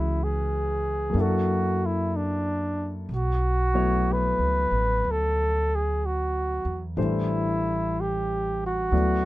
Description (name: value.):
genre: jazz ballad.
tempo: 62 BPM.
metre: 4/4.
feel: swing 67% on 8ths.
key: A major.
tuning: A4 = 440 Hz.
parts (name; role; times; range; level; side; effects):
mellow flugelhorn; melody; 0.0-9.3 s; D4 to B4; -26 LUFS; right 1 dB; none.
warm concert grand piano; accompaniment; 0.0-9.3 s; E3 to D5; -29 LUFS; left 3 dB; none.
upright bass; bass; 0.0-9.3 s; A1 to F#2; -27 LUFS; equal; none.
room: little or no reverb.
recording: dark, warm production.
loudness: -23 LUFS.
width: side -17 dB against mid.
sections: 0.0-9.3 A section.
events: none.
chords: 0.0 C#m7; 1.1 F#7alt; 3.1 Bm9; 7.0 Am7.